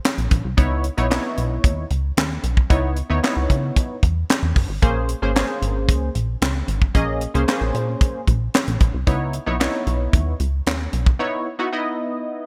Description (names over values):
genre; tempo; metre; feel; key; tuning
early-eighties boogie funk; 113 BPM; 4/4; straight; unclear; A4 = 439 Hz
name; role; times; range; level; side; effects
tight funk drum kit; drums; 0.0-11.2 s; handclaps, hi-hat, kick drum, snare drum; -22 LUFS; equal; gated reverb
plucky analog bass; bass; 0.2-11.1 s; Gb1 to Db3; -25 LUFS; equal; none
funky polysynth comp; accompaniment; 0.6-12.5 s; Bb3 to Eb5; -26 LUFS; equal; chorus
room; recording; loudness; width
small room ambience; none; -21 LUFS; mono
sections
0.0-12.5 A section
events
break 11.2-12.5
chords
0.0 Bbsus2; 0.6 Dbm9; 4.8 Bbm9; 9.1 Dbm9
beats
0.05 | 0.58 1.11 1.64 2.17 | 2.70 3.23 3.76 4.29 | 4.82 5.36 5.89 6.42 | 6.95 7.48 8.01 8.54 | 9.07 9.60 10.13 10.66 | 11.20 11.73 12.26